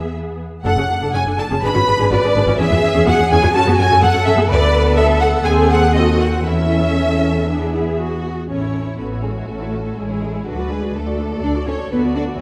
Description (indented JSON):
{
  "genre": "quick classical-period movement for string orchestra",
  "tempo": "115-128 BPM",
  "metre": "4/4",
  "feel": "rubato",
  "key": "A major",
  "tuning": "A4 = 440 Hz",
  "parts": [
    { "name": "clear studio violin section", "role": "melody", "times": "0.0-12.4 s", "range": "E4 to B5", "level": "-25 LUFS", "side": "equal", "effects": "none" },
    { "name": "rich studio violin section", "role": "second line", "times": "0.0-12.2 s", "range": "F#4 to B5", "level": "-25 LUFS", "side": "equal", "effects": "none" },
    { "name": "warm studio viola section", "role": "accompaniment", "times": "0.0-12.4 s", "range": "B3 to D5", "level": "-24 LUFS", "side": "equal", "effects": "none" },
    { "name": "dark studio cello section", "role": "bass", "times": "0.0-12.4 s", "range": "F#3 to B4", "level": "-23 LUFS", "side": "equal", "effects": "none" },
    { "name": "warm studio double bass section", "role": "bass", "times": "0.0-12.3 s", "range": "F#1 to F#2", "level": "-22 LUFS", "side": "equal", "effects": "none" }
  ],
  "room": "moderate scoring stage reverb, RT60 1.8 s",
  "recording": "dark, warm production",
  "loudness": "-17 LUFS",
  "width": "mono",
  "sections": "0.0-8.5 A section; 8.5-12.4 B section",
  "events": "none",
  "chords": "0.0 E; 0.6 D/F#; 1.6 G#dim; 2.6 C#m/E; 3.5 F#m; 4.5 Bm7/D; 5.4 D#dim7; 6.5 A/E; 7.5 E; 8.5 A; 10.5 D"
}